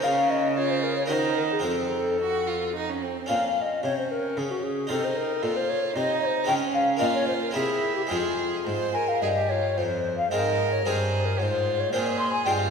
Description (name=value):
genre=classical, baroque-style sonata movement with continuo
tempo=111 BPM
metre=3/4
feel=straight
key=F minor from 6.5 s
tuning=A4 = 440 Hz
part: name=mellow hollow tenor recorder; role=melody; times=0.0-12.5 s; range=F4 to C6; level=-26 LUFS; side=left 3 dB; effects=none
part: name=clear violin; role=second line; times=0.0-12.7 s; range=C4 to C5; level=-29 LUFS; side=right 6 dB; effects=none
part: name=harpsichord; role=accompaniment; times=0.0-12.7 s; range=F2 to Gb4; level=-32 LUFS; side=right 1 dB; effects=none
part: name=rich cello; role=bass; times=0.0-12.7 s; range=F2 to Eb3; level=-32 LUFS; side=right 2 dB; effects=none
room=wet concert hall reverb, RT60 2.2 s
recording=heard from further back in the room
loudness=-23 LUFS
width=side -6 dB against mid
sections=0.0-9.8 A section; 9.8-12.7 B section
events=none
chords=0.0 Bbm/Db; 1.1 Ebm; 1.6 F; 3.3 Bbm; 4.9 F5; 6.5 Db; 7.0 Bbm; 7.5 C7; 8.1 Fm; 11.4 Fm/Ab